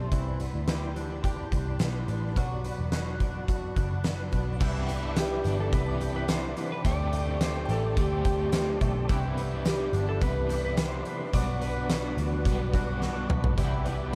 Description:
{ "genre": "dream pop", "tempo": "107 BPM", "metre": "4/4", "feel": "straight", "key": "C lydian", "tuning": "A4 = 440 Hz", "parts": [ { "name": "mellow tonewheel organ", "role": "sustained chords", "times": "0.0-14.2 s", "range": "F#3 to D6", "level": "-41 LUFS", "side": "equal", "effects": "chorus vibrato, fast rotary speaker" }, { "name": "picked twelve-string acoustic guitar", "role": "arpeggios", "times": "0.0-14.2 s", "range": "E3 to G4", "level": "-38 LUFS", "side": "equal", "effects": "analog chorus, digital delay" }, { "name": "vintage muted picked electric bass", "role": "bass", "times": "0.0-14.2 s", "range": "E1 to D2", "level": "-33 LUFS", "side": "equal", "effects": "none" }, { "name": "oversized low-tuned drum kit", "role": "drums", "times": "0.1-14.0 s", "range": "crash cymbal, hi-hat, kick drum, snare drum, tambourine, toms", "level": "-32 LUFS", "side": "equal", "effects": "none" }, { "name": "crunchy overdriven guitar", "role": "accompaniment", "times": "4.6-14.2 s", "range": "B2 to G4", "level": "-39 LUFS", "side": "equal", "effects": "tremolo, lush chorus" }, { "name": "glassy synth bell", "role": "texture", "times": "4.9-8.7, 13.6-14.2 s", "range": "F#5 to D6", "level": "-47 LUFS", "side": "equal", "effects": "none" }, { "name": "clean lap steel guitar", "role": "melody", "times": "5.2-12.7 s", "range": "G4 to D5", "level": "-37 LUFS", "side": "equal", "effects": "digital delay" } ], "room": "light reverb", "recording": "dark, warm production", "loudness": "-28 LUFS", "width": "mono", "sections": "0.0-4.6 A section; 4.6-14.2 B section", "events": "drum fill 13.0-13.6", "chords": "0.1 Cmaj9; 2.4 Bmadd11/E; 4.6 Cmaj9; 6.8 D7sus4; 9.1 Cmaj9; 11.3 Gmaj7/B; 13.6 Cmaj9" }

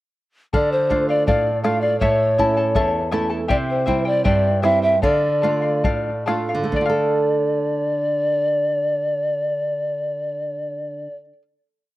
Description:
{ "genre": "andean folk, Andean ensemble", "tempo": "65-81 BPM", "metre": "2/4", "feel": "straight", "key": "D minor", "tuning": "A4 = 440 Hz", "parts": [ { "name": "mellow hollow polished pan flute", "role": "melody", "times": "0.5-11.2 s", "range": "C5 to F5", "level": "-20 LUFS", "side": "equal", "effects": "slapback echo" }, { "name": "charango", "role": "accompaniment", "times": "0.5-11.4 s", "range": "E4 to A5", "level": "-25 LUFS", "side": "left 4 dB", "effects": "slapback echo" }, { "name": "nylon-string guitar", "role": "accompaniment", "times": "0.5-11.4 s", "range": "E2 to A4", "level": "-23 LUFS", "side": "right 2 dB", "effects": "slapback echo" }, { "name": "bombo", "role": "percussion", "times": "0.5-7.2 s", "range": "none", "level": "-24 LUFS", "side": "left 1 dB", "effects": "none" } ], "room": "little or no reverb", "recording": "recorded outdoors, with no room sound", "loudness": "-18 LUFS", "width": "side -16 dB against mid", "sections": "0.5-6.7 A section; 6.7-10.4 final chord", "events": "slowing down 3.5-6.7", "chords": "0.5 Dm; 2.0 A; 3.5 C; 5.0 Dm" }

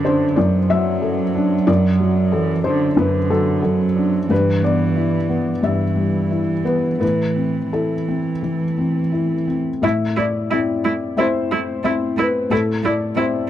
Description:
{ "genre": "neoclassical piano and strings", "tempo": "90 BPM", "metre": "4/4", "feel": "rubato", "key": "A dorian", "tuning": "A4 = 439 Hz", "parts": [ { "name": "dark cello", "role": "second line", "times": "0.0-13.5 s", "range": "D3 to A3", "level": "-22 LUFS", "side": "right 6 dB", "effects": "none" }, { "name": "felt-muted upright piano", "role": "accompaniment", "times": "0.0-13.5 s", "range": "F#2 to E5", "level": "-18 LUFS", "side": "left 2 dB", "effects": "none" }, { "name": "warm viola", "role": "accompaniment", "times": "9.8-13.2 s", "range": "E4", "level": "-23 LUFS", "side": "right 4 dB", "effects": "none" } ], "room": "small room ambience", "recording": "dry, close 1970s-style studio recording", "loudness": "-16 LUFS", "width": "side -11 dB against mid", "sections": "0.0-9.8 A section; 9.8-13.5 B section", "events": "none", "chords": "0.0 D/F#; 4.3 Em/G; 7.0 Am" }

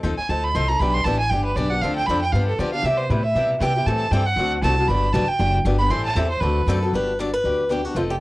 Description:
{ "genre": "acoustic string swing (jazz manouche)", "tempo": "235 BPM", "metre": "4/4", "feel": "swing 57% on 8ths", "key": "G major", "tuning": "A4 = 440 Hz", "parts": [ { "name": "picked steel-string acoustic guitar", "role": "accompaniment", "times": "0.0-8.1 s", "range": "C3 to A4", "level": "-25 LUFS", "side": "left 3 dB", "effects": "plate reverb" }, { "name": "upright bass", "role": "bass", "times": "0.0-8.2 s", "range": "F1 to D3", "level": "-23 LUFS", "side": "equal", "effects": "none" }, { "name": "clear violin", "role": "second line", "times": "0.2-6.8 s", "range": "A4 to C6", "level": "-22 LUFS", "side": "right 2 dB", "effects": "plate reverb" }, { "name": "picked swing-style acoustic guitar", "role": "melody", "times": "6.7-8.2 s", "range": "F4 to D5", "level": "-23 LUFS", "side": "left 1 dB", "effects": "cassette tape" } ], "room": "light reverb", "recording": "home recording on cassette", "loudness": "-18 LUFS", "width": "side -19 dB against mid", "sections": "0.0-6.9 A section; 6.9-8.2 B section", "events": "violin solo 0.0-6.9", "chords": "0.0 F6; 0.8 Em7; 1.8 Dm7; 2.3 G7; 2.8 Cmaj7; 3.9 Am7; 4.4 D7; 4.9 Gmaj7; 5.9 Am7; 6.4 D7; 6.9 Gmaj7" }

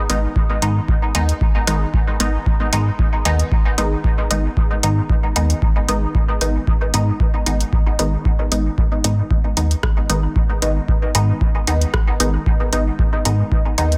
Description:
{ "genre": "dub techno", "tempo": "114 BPM", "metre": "4/4", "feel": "swing 54% on 16ths", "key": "G# minor", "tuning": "A4 = 439 Hz", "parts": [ { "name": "filtered dub chord stab", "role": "stabs", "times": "0.0-14.0 s", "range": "D#3 to D#4", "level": "-24 LUFS", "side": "equal", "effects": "chorus, phaser, sidechain pumping, dub echo" }, { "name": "soft dub sub bass", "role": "bass", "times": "0.1-14.0 s", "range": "G#1 to G#2", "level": "-21 LUFS", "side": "equal", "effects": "sidechain pumping" }, { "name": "booming analog drum machine", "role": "drums", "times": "0.1-14.0 s", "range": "hi-hat, rim click", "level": "-24 LUFS", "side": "equal", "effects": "none" }, { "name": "electronic kick drum", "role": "drums", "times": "0.4-13.6 s", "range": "none", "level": "-21 LUFS", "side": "equal", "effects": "none" } ], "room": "little or no reverb", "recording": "dense, heavily limited modern master", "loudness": "-18 LUFS", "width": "mono", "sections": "0.0-14.0 A section", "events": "filter sweep on synth stab 0.0-14.0", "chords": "0.0 G#m" }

